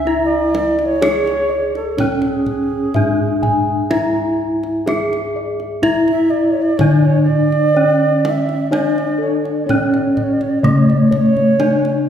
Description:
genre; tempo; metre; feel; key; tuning
Javanese gamelan; 62 BPM; 4/4; straight; C# pelog; A4 = 440 Hz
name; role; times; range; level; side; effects
gamelan-type bronze metallophone; melody; 0.0-12.1 s; A3 to G#4; -17 LUFS; left 1 dB; none
bright reedy low xiao; second line; 0.0-12.0 s; G#4 to E5; -20 LUFS; right 3 dB; none
gamelan-type bossed gongs; arpeggios; 0.0-12.1 s; A4 to G#5; -24 LUFS; left 2 dB; none
gamelan-type bossed gongs; bass; 0.0-12.1 s; C#2 to G#4; -20 LUFS; left 1 dB; none
kendang; percussion; 0.5-12.0 s; none; -25 LUFS; right 1 dB; none
room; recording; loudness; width
wet concert hall reverb, RT60 2.1 s; recorded in a church or concert hall; -13 LUFS; side -9 dB against mid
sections
0.0-12.1 A section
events
none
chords
none

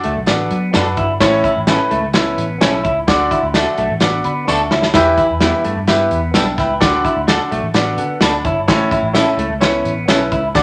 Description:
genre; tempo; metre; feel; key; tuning
uptempo 1960s-style soul; 128 BPM; 4/4; straight; unclear; A4 = 440 Hz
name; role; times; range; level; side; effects
clear baby grand piano; accompaniment; 0.0-10.6 s; A2 to E6; -19 LUFS; equal; none
electric guitar through a small old amp; riff; 0.0-10.5 s; A3 to E4; -23 LUFS; equal; warbly pitch drift
warm soul drum kit; drums; 0.0-10.6 s; hi-hat, kick drum, snare drum; -20 LUFS; equal; none
vintage muted picked electric bass; bass; 0.1-10.6 s; G1 to F#3; -26 LUFS; equal; none
tambourine; percussion; 0.3-10.6 s; none; -33 LUFS; equal; none
electric guitar at the edge of break-up; stabs; 0.7-10.2 s; G3 to A4; -26 LUFS; equal; spring reverb
room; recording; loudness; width
wet studio reverb, RT60 0.6 s; none; -15 LUFS; mono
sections
0.0-10.6 A section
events
drum fill 4.5-4.9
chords
0.0 D; 1.2 A; 3.1 D; 4.9 Em; 6.8 D; 8.7 A

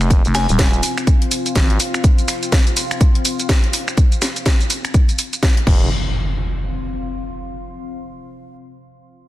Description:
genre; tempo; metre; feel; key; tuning
bass house; 124 BPM; 4/4; swing 60% on 16ths; unclear; A4 = 440 Hz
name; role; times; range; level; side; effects
growling FM bass; bass; 0.0-1.8, 5.7-5.9 s; Eb1 to Ab1; -18 LUFS; equal; overdrive, sidechain pumping
garage drum kit; drums; 0.0-5.8 s; crash cymbal, finger snaps, hi-hat, shaker, snare drum; -21 LUFS; equal; none
impact; sound effects; 0.0-0.1, 5.7-7.6 s; none; -23 LUFS; equal; none
deep dark ambient pad; texture; 0.2-7.8 s; C4 to C6; -28 LUFS; left 3 dB; chorus, built-in reverb, sidechain pumping
electronic kick drum; drums; 0.1-5.8 s; none; -14 LUFS; equal; none
glassy synth bell; melody; 0.3-0.7 s; Ab5; -26 LUFS; left 2 dB; chorus, tremolo, digital delay
room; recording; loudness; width
digital ambience; dense, heavily limited modern master; -14 LUFS; side -15 dB against mid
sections
0.0-5.9 A section; 5.9-7.8 B section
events
fade-out on ambient pad 0.0-5.9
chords
0.0 F5

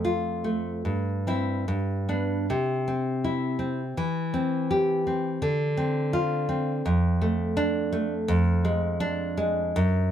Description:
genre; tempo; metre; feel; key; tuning
romantic piece for solo classical guitar; 71-86 BPM; 2/4; rubato; C major; A4 = 440 Hz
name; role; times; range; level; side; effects
nylon-string guitar; solo; 0.0-10.1 s; F2 to G4; -24 LUFS; equal; none
room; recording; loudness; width
light reverb; close, detailed microphones; -24 LUFS; side -10 dB against mid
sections
0.0-2.5 A section; 2.5-10.1 A section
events
none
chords
0.0 F; 0.8 C/G; 1.7 G; 2.5 C; 4.0 C/E; 5.4 Dm7; 6.9 Dm/F; 8.3 Ddim/F

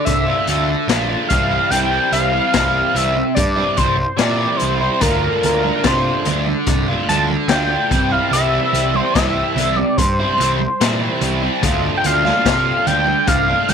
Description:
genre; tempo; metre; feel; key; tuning
psychedelic rock; 73 BPM; 4/4; straight; unclear; A4 = 439 Hz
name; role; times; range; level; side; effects
octave-doubled lead; melody; 0.0-13.7 s; Bb4 to A5; -18 LUFS; equal; chorus, slapback echo
biting overdriven guitar; riff; 0.0-13.7 s; C3 to F4; -20 LUFS; right 1 dB; flanger
fuzz picked electric bass; bass; 0.1-13.7 s; Bb1 to C3; -22 LUFS; equal; overdrive
raw garage drum kit; drums; 0.1-13.7 s; hi-hat, kick drum, snare drum; -21 LUFS; left 4 dB; none
congas; percussion; 5.4-13.7 s; none; -28 LUFS; right 13 dB; none
room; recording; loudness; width
small room ambience; 1960s-style stereo; -14 LUFS; side -7 dB against mid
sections
0.0-13.7 A section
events
analog synth lead solo 0.0-13.7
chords
0.0 Dm; 1.3 C; 5.0 Dm; 7.9 C; 11.6 Dm

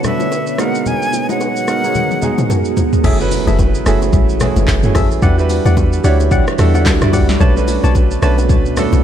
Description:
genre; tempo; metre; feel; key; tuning
amapiano; 110 BPM; 4/4; swing 58% on 16ths; unclear; A4 = 437 Hz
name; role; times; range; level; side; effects
breathy bright jazz flute; melody; 0.0-2.7 s; E5 to G#5; -21 LUFS; left 2 dB; tape echo
warm concert grand piano; accompaniment; 0.0-9.0 s; G3 to D5; -18 LUFS; right 5 dB; none
deep dark ambient pad; sustained chords; 0.0-9.0 s; B2 to C#5; -22 LUFS; right 1 dB; chorus, built-in reverb, tremolo
deep house drum kit; drums; 0.0-9.0 s; crash cymbal, handclaps, hi-hat, kick drum, rim click, shaker, snare drum, toms; -17 LUFS; equal; vintage 12-bit sampler grit
congas and bongos; percussion; 0.0-9.0 s; none; -23 LUFS; left 7 dB; none
percussive organ stab; stabs; 3.0-8.4 s; G4 to A5; -23 LUFS; left 2 dB; chorus, tape echo
deep log drum bass; bass; 3.0-9.0 s; F#1 to E2; -15 LUFS; equal; none
impact; sound effects; 3.0-5.2 s; none; -24 LUFS; equal; none
room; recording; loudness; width
little or no reverb; none; -12 LUFS; side -10 dB against mid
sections
0.0-3.0 A section; 3.0-9.0 B section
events
drum fill 2.0-3.0; drop 3.0-9.0; impact 3.0-5.2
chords
0.0 Bm9; 0.6 G#m9; 3.0 F#m9; 5.2 Em9; 7.4 Bm9

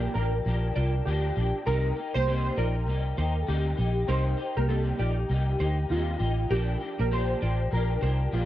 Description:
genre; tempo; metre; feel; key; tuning
indie pop, bedroom pop; 99 BPM; 4/4; swing 60% on 16ths; unclear; A4 = 440 Hz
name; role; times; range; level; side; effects
warbly lo-fi synth keys; melody; 0.0-8.5 s; F4 to C5; -32 LUFS; equal; ensemble chorus, analog delay
electric guitar at the edge of break-up; second line; 0.0-8.2 s; Bb3 to D5; -36 LUFS; right 4 dB; analog chorus, analog delay
electric guitar through a small old amp; accompaniment; 0.0-8.5 s; Bb2 to G4; -35 LUFS; left 4 dB; ensemble chorus, warbly pitch drift
vintage muted fingered electric bass; bass; 0.0-8.5 s; A1 to Eb2; -26 LUFS; equal; none
room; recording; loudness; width
little or no reverb; cassette tape; -25 LUFS; side -13 dB against mid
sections
0.0-8.5 A section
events
none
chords
0.0 Cm7; 6.5 Bb6

